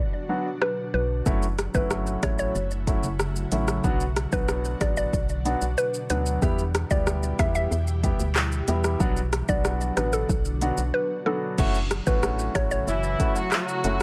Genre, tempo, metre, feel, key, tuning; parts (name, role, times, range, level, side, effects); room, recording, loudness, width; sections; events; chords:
dancehall; 93 BPM; 4/4; straight; B minor; A4 = 440 Hz
ethereal airy pad; sustained chords; 0.0-14.0 s; B2 to G4; -37 LUFS; equal; ensemble chorus, built-in reverb, sidechain pumping
warm grand piano; accompaniment; 0.3-14.0 s; F#3 to G4; -32 LUFS; equal; sidechain pumping
mallet-like synth pluck; melody; 0.6-12.9 s; A4 to E5; -31 LUFS; equal; chorus, digital delay
afro-pop drum kit; drums; 0.6-14.0 s; crash cymbal, handclaps, hi-hat, kick drum, rim click, shaker; -29 LUFS; equal
organ-like FM bass; bass; 0.9-14.0 s; F#1 to E2; -30 LUFS; equal
mellow horn section; second line; 12.9-14.0 s; E3 to F#4; -29 LUFS; equal; digital delay
little or no reverb; -25 LUFS; mono
0.0-1.3 A section; 1.3-11.6 B section; 11.6-14.0 C section
0.0 Bm; 1.3 F#m7; 3.8 Bm; 6.4 Em; 9.0 Bm; 11.6 F#m7